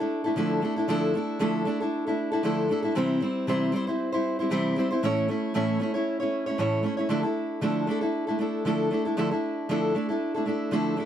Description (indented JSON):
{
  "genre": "pop",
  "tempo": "116 BPM",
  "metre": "4/4",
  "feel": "swing 55% on 16ths",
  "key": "D minor",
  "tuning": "A4 = 440 Hz",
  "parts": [
    { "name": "fingerpicked steel-string acoustic guitar", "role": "solo", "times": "0.0-11.1 s", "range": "A2 to C#5", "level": "-24 LUFS", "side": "equal", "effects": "none" }
  ],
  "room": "little or no reverb",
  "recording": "dry, close 1970s-style studio recording",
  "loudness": "-24 LUFS",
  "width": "side -10 dB against mid",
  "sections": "0.0-7.1 A section; 7.1-11.1 B section",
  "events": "none",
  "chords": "0.0 Dmadd9; 3.0 C; 5.0 A; 7.1 Dmadd9"
}